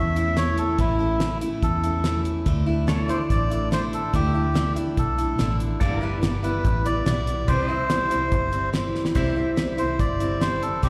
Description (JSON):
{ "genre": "honky-tonk and classic country", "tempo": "143 BPM", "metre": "4/4", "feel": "straight", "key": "C major", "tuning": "A4 = 439 Hz", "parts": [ { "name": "melodica", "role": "melody", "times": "0.0-10.9 s", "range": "E4 to E5", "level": "-29 LUFS", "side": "equal", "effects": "slapback echo" }, { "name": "picked steel-string acoustic guitar", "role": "accompaniment", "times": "0.0-10.9 s", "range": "G2 to E4", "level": "-30 LUFS", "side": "equal", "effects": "slapback echo" }, { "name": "pedal steel guitar", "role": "sustained chords", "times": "0.0-10.9 s", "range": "A4 to E5", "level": "-38 LUFS", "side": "equal", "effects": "lush chorus" }, { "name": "vintage muted fingered electric bass", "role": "bass", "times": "0.0-10.9 s", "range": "G1 to E2", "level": "-28 LUFS", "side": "equal", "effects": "none" }, { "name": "damped 70s drum kit", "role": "drums", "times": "0.2-10.9 s", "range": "hi-hat, kick drum, snare drum", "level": "-28 LUFS", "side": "equal", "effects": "none" } ], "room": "light reverb", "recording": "live gig heard through the venue's PA, recital hall reverb", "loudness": "-23 LUFS", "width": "mono", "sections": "0.0-9.2 A section; 9.2-10.9 A section", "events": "drum fill 8.9", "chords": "0.0 A; 2.5 Dsus2; 5.8 G6; 7.5 C", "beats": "0.37 | 0.79 1.21 1.62 2.04 | 2.46 2.88 3.30 3.72 | 4.13 4.55 4.97 5.39 | 5.81 6.23 6.64 7.06 | 7.48 7.90 8.32 8.74 | 9.16 9.57 9.99 10.41 | 10.83" }